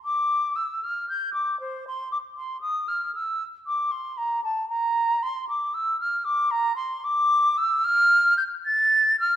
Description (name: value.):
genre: classical, baroque-style fantasia for unaccompanied flute.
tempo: 76 BPM (dotted quarters).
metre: 12/8.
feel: rubato.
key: D minor from 6.3 s.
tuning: A4 = 440 Hz.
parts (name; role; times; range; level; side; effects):
concert flute; solo; 0.0-9.4 s; C5 to A6; -21 LUFS; equal; none.
room: moderate scoring stage reverb, RT60 1.5 s.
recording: dark, warm production.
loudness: -22 LUFS.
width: side -11 dB against mid.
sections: 0.0-9.4 A section.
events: none.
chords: none.